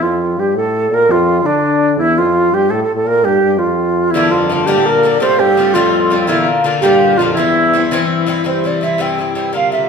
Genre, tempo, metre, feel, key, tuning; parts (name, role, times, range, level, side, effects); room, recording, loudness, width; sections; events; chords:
celtic folk, Celtic jig; 111 BPM (dotted quarters); 6/8; straight; C mixolydian; A4 = 440 Hz
wooden flute; melody; 0.0-9.9 s; D4 to G5; -13 LUFS; right 2 dB
warm French horn; second line; 0.0-8.1 s; E2 to D3; -19 LUFS; left 3 dB
Irish bouzouki; accompaniment; 4.1-9.9 s; G2 to F4; -16 LUFS; left 4 dB
pedal harmonium; drone; 8.4-9.9 s; C3 to G3; -24 LUFS; equal
wet large studio reverb, RT60 1.2 s; band playing live in one room; -11 LUFS; side -6 dB against mid
0.0-8.4 A section; 8.4-9.9 B section
0.0 N.C.; 4.1 Gm; 5.2 Fadd9; 6.3 Bb; 7.4 C